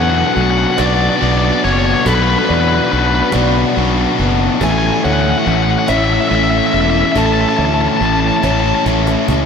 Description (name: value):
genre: post-rock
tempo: 47 BPM (dotted quarters)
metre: 6/8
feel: straight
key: A major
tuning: A4 = 440 Hz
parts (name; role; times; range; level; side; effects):
- overdriven electric guitar; melody; 0.0-8.8 s; B4 to A5; -17 LUFS; left 3 dB; analog delay
- felt-muted upright piano; arpeggios; 0.0-9.3 s; A4 to D5; -25 LUFS; right 2 dB; analog chorus, analog delay
- biting overdriven guitar; riff; 0.0-9.5 s; A2 to F#4; -17 LUFS; left 8 dB; none
- crunchy overdriven guitar; riff; 0.0-9.5 s; A2 to E4; -19 LUFS; right 8 dB; lush chorus
- fuzz fingered electric bass; bass; 0.0-9.5 s; E1 to E2; -18 LUFS; equal; overdrive
- cajon; drums; 0.4-9.5 s; none; -29 LUFS; equal; none
room: wet cathedral reverb, RT60 5.8 s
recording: dreamy mix soaked in reverb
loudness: -12 LUFS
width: side -6 dB against mid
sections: 0.0-9.5 A section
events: drum fill 8.4-9.5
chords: 0.0 Bm; 4.6 A